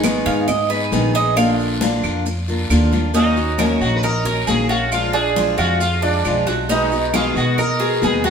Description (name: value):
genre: latin, Cuban son and guajira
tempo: 135 BPM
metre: 4/4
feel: straight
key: Eb minor from 3.1 s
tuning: A4 = 440 Hz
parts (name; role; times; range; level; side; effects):
- picked steel-string acoustic guitar; accompaniment; 0.0-8.3 s; B2 to Ab4; -20 LUFS; left 1 dB; none
- upright bass; bass; 0.0-8.3 s; Ab1 to B2; -22 LUFS; equal; none
- claves; percussion; 0.0-7.8 s; none; -31 LUFS; right 3 dB; none
- congas; percussion; 0.0-8.3 s; none; -28 LUFS; left 3 dB; none
- guiro; percussion; 0.0-8.3 s; none; -32 LUFS; left 2 dB; none
- maracas; percussion; 0.0-8.3 s; none; -34 LUFS; right 3 dB; none
- Cuban tres; arpeggios; 0.3-8.3 s; D4 to F5; -21 LUFS; right 4 dB; none
- sitar; melody; 3.2-8.3 s; D4 to Cb5; -21 LUFS; equal; none
room: wet stone room reverb, RT60 1.3 s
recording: band playing live in one room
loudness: -15 LUFS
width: side -6 dB against mid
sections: 0.0-3.1 A section; 3.1-8.3 B section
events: Cuban tres solo 0.0-3.1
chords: 0.0 Abm; 1.4 Bb; 3.1 Ebm7; 4.9 Bb7; 6.7 B6